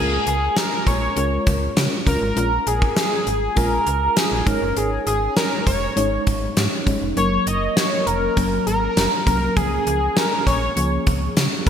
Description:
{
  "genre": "1980s-style pop",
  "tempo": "100 BPM",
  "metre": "4/4",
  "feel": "straight",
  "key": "Db major",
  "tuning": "A4 = 440 Hz",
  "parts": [
    { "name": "octave-doubled lead", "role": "melody", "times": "0.0-11.7 s", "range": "Ab4 to Eb5", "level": "-22 LUFS", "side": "equal", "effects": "chorus, phaser" },
    { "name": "FM electric piano with soft pad layer", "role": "accompaniment", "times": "0.0-11.7 s", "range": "F3 to Db5", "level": "-25 LUFS", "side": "left 1 dB", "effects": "chorus, tremolo" },
    { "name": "slap-like FM bass", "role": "bass", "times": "0.0-11.7 s", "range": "F1 to Db3", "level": "-24 LUFS", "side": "equal", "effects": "none" },
    { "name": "gated 80s drum kit", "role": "drums", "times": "0.3-11.7 s", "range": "hi-hat, kick drum, snare drum", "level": "-21 LUFS", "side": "equal", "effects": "gated reverb" }
  ],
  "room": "wet lush hall reverb, RT60 2.5 s",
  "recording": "bright 1980s-style digital production",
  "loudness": "-17 LUFS",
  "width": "side -8 dB against mid",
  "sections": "0.0-11.7 A section",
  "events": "none",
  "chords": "0.0 Db6; 4.5 Absus4; 7.2 Gb; 9.6 Db6"
}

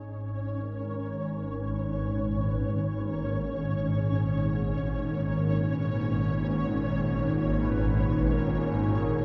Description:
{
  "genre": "dark ambient drone",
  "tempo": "60 BPM",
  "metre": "4/4",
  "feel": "straight",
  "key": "unclear",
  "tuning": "A4 = 441 Hz",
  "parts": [
    { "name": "sweeping resonant pad", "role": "sustained chords", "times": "0.0-9.2 s", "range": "G#2 to D#4", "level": "-31 LUFS", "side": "equal", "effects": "chorus" },
    { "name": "swarming drone", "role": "drone", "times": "1.1-9.2 s", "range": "G#1 to G#2", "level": "-34 LUFS", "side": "equal", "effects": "built-in reverb" },
    { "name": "flickering grainy texture", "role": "texture", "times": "0.0-9.2 s", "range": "C#4 to C#5", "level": "-37 LUFS", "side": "equal", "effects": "built-in reverb" },
    { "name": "mellow horn-like synth lead", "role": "melody", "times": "0.6-9.2 s", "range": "G#4 to B4", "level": "-45 LUFS", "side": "equal", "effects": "ensemble chorus, tape echo" }
  ],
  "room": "wet huge ambient reverb, RT60 7.0 s",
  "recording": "nothing above 7.6 kHz",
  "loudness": "-28 LUFS",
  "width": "mono",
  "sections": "0.0-9.2 A section",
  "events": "fade-in on soft synth lead 0.0-9.2",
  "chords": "0.0 C#5"
}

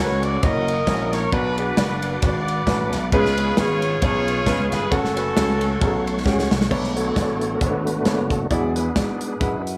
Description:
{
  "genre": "uptempo gospel",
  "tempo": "134 BPM",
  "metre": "4/4",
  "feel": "swing 56% on 8ths",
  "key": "F# harmonic minor",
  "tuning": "A4 = 438 Hz",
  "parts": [
    { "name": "warm horn section", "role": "melody", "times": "0.0-6.3 s", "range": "C#4 to D#5", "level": "-26 LUFS", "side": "equal", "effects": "slapback echo" },
    { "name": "bright upright piano", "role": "accompaniment", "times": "0.0-9.7 s", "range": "B2 to D5", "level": "-28 LUFS", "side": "equal", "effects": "none" },
    { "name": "bright tonewheel organ", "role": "sustained chords", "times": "0.0-9.6 s", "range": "D3 to D6", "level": "-30 LUFS", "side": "equal", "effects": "slow rotary speaker, chorus vibrato" },
    { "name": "slap bass with an envelope filter", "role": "bass", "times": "0.0-9.8 s", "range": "F#1 to G#2", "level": "-27 LUFS", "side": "equal", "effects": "none" },
    { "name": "modern studio drum kit", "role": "drums", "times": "0.2-9.8 s", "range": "crash cymbal, hi-hat, kick drum, ride cymbal, snare drum", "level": "-26 LUFS", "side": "equal", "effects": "none" }
  ],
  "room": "light reverb, small room ambience",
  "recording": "none",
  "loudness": "-21 LUFS",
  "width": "mono",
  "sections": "0.0-6.7 A section; 6.7-9.8 B section",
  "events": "drum fill 6.3-6.7; tonewheel organ solo 6.7-9.8",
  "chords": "0.4 F#7; 1.3 Bm; 3.1 C#7; 4.9 F#m; 6.7 Bm9; 8.5 E9"
}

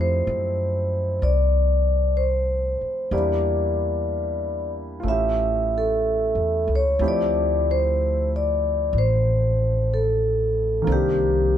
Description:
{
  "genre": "jazz ballad",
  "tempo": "62 BPM",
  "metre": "4/4",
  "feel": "swing 68% on 8ths",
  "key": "D minor from 7.0 s",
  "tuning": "A4 = 440 Hz",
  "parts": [
    { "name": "vibraphone with medium mallets", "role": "melody", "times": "0.0-11.6 s", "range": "G4 to E5", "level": "-22 LUFS", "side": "left 1 dB", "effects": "none" },
    { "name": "warm grand piano", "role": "accompaniment", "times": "0.0-11.6 s", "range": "Eb3 to D#5", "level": "-30 LUFS", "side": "right 3 dB", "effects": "none" },
    { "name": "upright bass", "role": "bass", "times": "0.0-11.6 s", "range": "A1 to Gb2", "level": "-23 LUFS", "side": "equal", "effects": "none" }
  ],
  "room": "little or no reverb",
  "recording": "close, detailed microphones",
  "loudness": "-20 LUFS",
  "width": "side -10 dB against mid",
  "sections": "0.0-7.0 A section; 7.0-11.6 B section",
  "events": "none",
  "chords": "0.0 Fmaj7; 3.1 Em7b5; 5.0 A7b13; 7.0 Dm11; 10.9 Cm7"
}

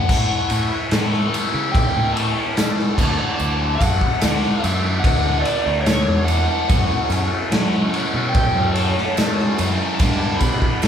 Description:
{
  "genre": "psychedelic rock",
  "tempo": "73 BPM",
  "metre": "4/4",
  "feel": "straight",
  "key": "A mixolydian",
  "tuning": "A4 = 439 Hz",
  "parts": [
    { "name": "overdriven slide guitar", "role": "melody", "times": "0.0-10.9 s", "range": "C#5 to B5", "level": "-25 LUFS", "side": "left 1 dB", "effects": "none" },
    { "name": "string machine, cellos", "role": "sustained chords", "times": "0.0-0.1, 6.7-10.9 s", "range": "F#3 to D5", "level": "-30 LUFS", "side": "right 1 dB", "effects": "phaser, ensemble chorus" },
    { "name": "biting overdriven guitar", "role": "riff", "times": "0.0-10.9 s", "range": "F#2 to E4", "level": "-24 LUFS", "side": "left 2 dB", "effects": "phaser" },
    { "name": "fuzz fingered electric bass", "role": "bass", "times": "0.0-10.9 s", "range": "D2 to F#3", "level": "-23 LUFS", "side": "equal", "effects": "overdrive" },
    { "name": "raw garage drum kit", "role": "drums", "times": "0.1-10.9 s", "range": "crash cymbal, kick drum, ride cymbal, snare drum", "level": "-20 LUFS", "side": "equal", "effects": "none" },
    { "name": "tambourine", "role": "percussion", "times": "0.1-10.9 s", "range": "none", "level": "-37 LUFS", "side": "right 6 dB", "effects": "none" }
  ],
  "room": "moderate large studio reverb, RT60 0.9 s",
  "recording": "band playing live in one room",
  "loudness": "-16 LUFS",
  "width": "side -8 dB against mid",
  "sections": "0.1-10.9 A section",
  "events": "none",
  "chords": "0.1 A; 3.0 D; 6.7 F#m; 10.0 G"
}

